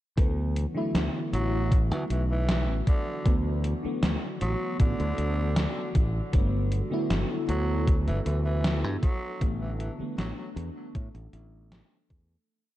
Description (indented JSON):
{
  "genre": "vaporwave",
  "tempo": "78 BPM",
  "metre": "4/4",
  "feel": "straight",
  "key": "D major",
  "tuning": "A4 = 440 Hz",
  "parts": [
    { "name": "FM electric piano with soft pad layer", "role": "accompaniment", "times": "0.2-12.5 s", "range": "D3 to E4", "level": "-34 LUFS", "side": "left 1 dB", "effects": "phaser, analog chorus, tape echo" },
    { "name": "warbly tape-like pad", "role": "sustained chords", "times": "0.7-12.5 s", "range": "E3 to A4", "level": "-39 LUFS", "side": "right 1 dB", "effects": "chorus, built-in reverb, vintage 12-bit sampler grit" },
    { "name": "modern bright fingered electric bass", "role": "bass", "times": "0.2-12.4 s", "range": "G1 to A2", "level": "-28 LUFS", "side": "equal", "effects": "none" },
    { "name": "electronic kick drum", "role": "drums", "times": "0.2-12.3 s", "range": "none", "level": "-24 LUFS", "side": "equal", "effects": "none" },
    { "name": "gated 80s digital drum machine", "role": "drums", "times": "0.2-12.3 s", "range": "hi-hat, snare drum", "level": "-30 LUFS", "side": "equal", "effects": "gated reverb, gated reverb snare" },
    { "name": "growling tenor saxophone", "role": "melody", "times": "1.3-10.5 s", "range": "D3 to F#3", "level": "-35 LUFS", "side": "equal", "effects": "tape echo" }
  ],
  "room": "light reverb, digital ambience",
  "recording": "dark, warm production, cassette tape",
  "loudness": "-25 LUFS",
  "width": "side -14 dB against mid",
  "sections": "0.2-12.5 groove",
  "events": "fade-out 8.4-12.5",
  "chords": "0.2 D69; 6.3 Gmaj9; 9.0 A7sus4"
}